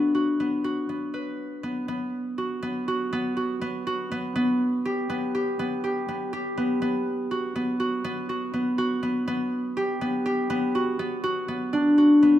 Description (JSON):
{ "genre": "contemporary instrumental, contemporary", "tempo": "244 BPM (eighths)", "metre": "5/8", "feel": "straight", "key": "B minor", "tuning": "A4 = 442 Hz", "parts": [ { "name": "concert harp", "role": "solo", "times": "0.0-12.4 s", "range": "A3 to B4", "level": "-23 LUFS", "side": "equal", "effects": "none" } ], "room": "moderate scoring stage reverb, RT60 1.5 s", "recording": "minimal, uncompressed stereo recording", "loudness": "-24 LUFS", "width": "side -12 dB against mid", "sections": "0.0-1.9 A section; 1.9-11.7 B section", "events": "none", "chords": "0.0 D; 1.9 B5; 4.4 G/B; 11.7 Bm" }